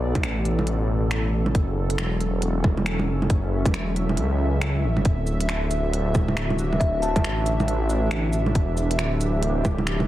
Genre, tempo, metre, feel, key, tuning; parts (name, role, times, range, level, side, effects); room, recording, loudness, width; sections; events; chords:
future garage; 137 BPM; 4/4; swing 62% on 16ths; A4 = 440 Hz
airy breathy pad; sustained chords; 0.0-10.1 s; B2 to E5; -28 LUFS; right 1 dB; chorus, vintage 12-bit sampler grit, sidechain pumping
swelling detuned saw bass; bass; 0.0-10.1 s; D1 to C#2; -24 LUFS; equal; sidechain pumping
electronic kick drum; drums; 0.2-9.8 s; -23 LUFS; equal; overdrive, vintage 12-bit sampler grit
organic electronic drum kit; drums; 0.2-10.1 s; bongos, cabasa, finger snaps, hi-hat; -28 LUFS; right 2 dB; overdrive, vintage 12-bit sampler grit, soft clipping on snare
kalimba; melody; 6.8-7.4 s; E5 to A5; -29 LUFS; left 2 dB; analog delay
light reverb; dense, heavily limited modern master; -21 LUFS; side -14 dB against mid
0.0-10.1 A section
0.0 Bm7; 1.5 F#m7; 5.1 Dadd9; 8.6 Em7